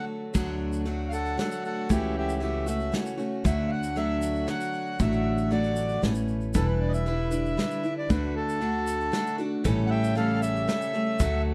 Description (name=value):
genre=acoustic folk duo or small band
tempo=116 BPM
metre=3/4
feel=straight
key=D major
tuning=A4 = 441 Hz
part: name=accordion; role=melody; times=0.0-11.4 s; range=G4 to G5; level=-33 LUFS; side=equal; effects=none
part: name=picked steel-string acoustic guitar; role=accompaniment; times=0.0-11.5 s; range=A2 to B4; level=-33 LUFS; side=equal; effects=none
part: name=warm chamber string section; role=sustained chords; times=0.0-11.5 s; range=B2 to G4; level=-39 LUFS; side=equal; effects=none
part: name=soft brush drum kit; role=drums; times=0.3-11.3 s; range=crash cymbal, hi-hat, kick drum, snare drum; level=-32 LUFS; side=equal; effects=none
part: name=tube shaker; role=percussion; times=0.3-11.3 s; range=none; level=-50 LUFS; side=equal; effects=none
part: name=upright bass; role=bass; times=0.4-11.5 s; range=E1 to D2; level=-31 LUFS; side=equal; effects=none
room=light reverb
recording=dark, warm production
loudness=-27 LUFS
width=mono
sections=0.3-11.5 A section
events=accordion solo 0.3-11.5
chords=0.3 D; 1.9 A6/C#; 3.5 D; 5.0 D/A; 6.0 Aadd9; 6.5 Em7; 8.1 D; 9.6 A7